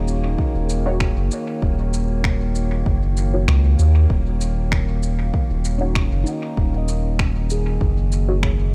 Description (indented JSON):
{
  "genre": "ambient dub",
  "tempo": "97 BPM",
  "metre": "4/4",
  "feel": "straight",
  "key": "Eb minor",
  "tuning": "A4 = 440 Hz",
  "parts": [
    { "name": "warbly tape-like pad", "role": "sustained chords", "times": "0.0-8.7 s", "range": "Eb3 to Db5", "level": "-30 LUFS", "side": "equal", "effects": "chorus, built-in reverb" },
    { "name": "handpan", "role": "arpeggios", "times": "0.0-8.7 s", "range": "Db4 to Eb5", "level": "-34 LUFS", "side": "equal", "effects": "dub echo" },
    { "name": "round analog bass", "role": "bass", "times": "0.0-8.7 s", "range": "Eb1 to Eb2", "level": "-21 LUFS", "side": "equal", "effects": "none" },
    { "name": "electronic shaker and finger snaps", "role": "drums", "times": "0.1-8.6 s", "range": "none", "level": "-32 LUFS", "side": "equal", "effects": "studio reverb, dub echo" },
    { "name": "electronic kick drum", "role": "drums", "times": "0.4-8.6 s", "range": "none", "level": "-24 LUFS", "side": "equal", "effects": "studio reverb" },
    { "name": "filtered dub chord stab", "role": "stabs", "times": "0.9-8.5 s", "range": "Eb4 to Db5", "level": "-32 LUFS", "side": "equal", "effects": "phaser, ensemble chorus, dub echo" }
  ],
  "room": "digital ambience",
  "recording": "none",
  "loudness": "-20 LUFS",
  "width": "mono",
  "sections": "0.0-8.7 A section",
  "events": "none",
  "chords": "0.0 Ebm7"
}